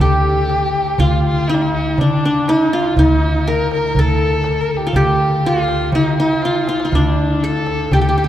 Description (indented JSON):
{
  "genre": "Arabic maqam ensemble",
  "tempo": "121 BPM",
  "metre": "4/4",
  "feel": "straight",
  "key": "D maqam bayati",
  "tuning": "A4 = 440 Hz",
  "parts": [
    { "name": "qanun", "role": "melody", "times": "0.0-8.3 s", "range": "D4 to Bb4", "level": "-18 LUFS", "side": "equal", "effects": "none" },
    { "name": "warm violin", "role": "second line", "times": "0.0-8.3 s", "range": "D4 to Bb4", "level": "-21 LUFS", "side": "left 2 dB", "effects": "none" },
    { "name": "upright bass", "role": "bass", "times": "0.0-8.3 s", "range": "D2 to D3", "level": "-18 LUFS", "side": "equal", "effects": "none" },
    { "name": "darbuka", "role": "percussion", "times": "0.0-8.2 s", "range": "none", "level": "-22 LUFS", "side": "left 1 dB", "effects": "none" }
  ],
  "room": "wet cathedral reverb, RT60 6.2 s",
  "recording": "recorded in a church or concert hall",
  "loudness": "-14 LUFS",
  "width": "side -12 dB against mid",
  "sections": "0.0-8.3 A section",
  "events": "drum fill 6.4-6.9",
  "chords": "none"
}